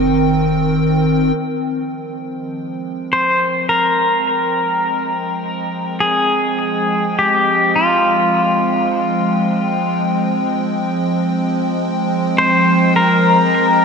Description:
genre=ambient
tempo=52 BPM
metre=4/4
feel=straight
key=F minor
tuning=A4 = 440 Hz
part: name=pedal steel guitar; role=melody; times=0.0-13.8 s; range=Eb4 to C5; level=-15 LUFS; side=left 1 dB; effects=ping-pong delay
part: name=evolving wavetable pad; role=sustained chords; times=0.0-13.8 s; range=Eb3 to G5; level=-17 LUFS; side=right 1 dB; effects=chorus, built-in reverb
part: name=round analog bass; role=bass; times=0.0-1.3 s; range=F1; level=-28 LUFS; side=left 1 dB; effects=none
room=wet cathedral reverb, RT60 4.6 s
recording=dark, warm production, nothing above 11.0 kHz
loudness=-14 LUFS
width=side -5 dB against mid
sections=0.0-1.4 A section; 1.4-13.8 A section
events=fade-in on ambient pad 1.4-13.8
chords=0.0 Cm/F; 1.4 Fmadd9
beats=0.22 | 1.38 2.53 3.68 4.84 | 5.99 7.15 8.30 9.45 | 10.61 11.76 12.91

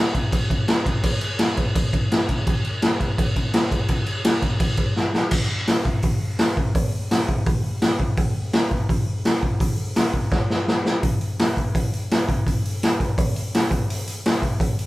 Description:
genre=punk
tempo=168 BPM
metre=4/4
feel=straight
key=none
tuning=none
part: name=raw garage drum kit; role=drums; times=0.1-14.9 s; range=crash cymbal, hi-hat, kick drum, snare drum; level=-19 LUFS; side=equal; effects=none
room=little or no reverb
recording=band playing live in one room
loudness=-19 LUFS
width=side -18 dB against mid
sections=0.0-5.3 A section; 5.3-11.0 B section; 11.0-14.9 C section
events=drum fill 5.0-5.3, 10.3-11.0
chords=none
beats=0.32 0.68 | 1.03 1.39 1.75 2.11 | 2.46 2.82 3.18 3.53 | 3.89 4.25 4.61 4.96 | 5.32 5.67 6.03 6.39 | 6.75 7.10 7.46 7.82 | 8.17 8.53 8.89 9.24 | 9.60 9.96 10.31 10.67 | 11.03 11.38 11.74 12.10 | 12.45 12.81 13.17 13.53 | 13.88 14.24 14.60

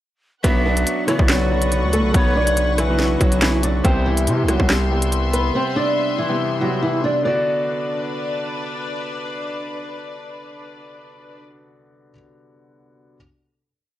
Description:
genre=hip hop, drill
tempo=141 BPM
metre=4/4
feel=half-time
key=B minor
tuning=A4 = 441 Hz
part: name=nylon-string guitar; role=melody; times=0.4-8.5 s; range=E3 to D5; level=-21 LUFS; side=right 1 dB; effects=low-pass filter, analog delay
part: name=breathy large pan pipes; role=second line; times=0.4-3.8 s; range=B4 to E5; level=-26 LUFS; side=equal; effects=analog delay
part: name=clear grand piano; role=accompaniment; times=0.4-13.2 s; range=C3 to G4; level=-26 LUFS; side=left 2 dB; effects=low-pass filter
part: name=warm studio string section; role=sustained chords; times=0.4-11.4 s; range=B3 to C#6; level=-28 LUFS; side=left 2 dB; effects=none
part: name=distorted 808-style bass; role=bass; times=0.4-5.5 s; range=B1 to C3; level=-20 LUFS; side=equal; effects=distortion
part: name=drill drum kit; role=drums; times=0.4-5.4 s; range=handclaps, hi-hat, kick drum, rim click, snare drum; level=-20 LUFS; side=equal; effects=overdrive
room=light reverb, small room reverb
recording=dry, gritty hardware recording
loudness=-17 LUFS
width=side -13 dB against mid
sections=0.4-7.2 hook; 7.2-10.7 final chord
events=none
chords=0.4 Bmadd9; 3.8 Cmaj7; 7.2 Bm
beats=| 0.44 0.87 1.29 1.72 | 2.14 2.57 3.00 3.42 | 3.85 4.27 4.70 5.12 | 5.55 5.97 6.40 6.83 | 7.25 7.68 8.10 8.53 | 8.95 9.38 9.80 10.23

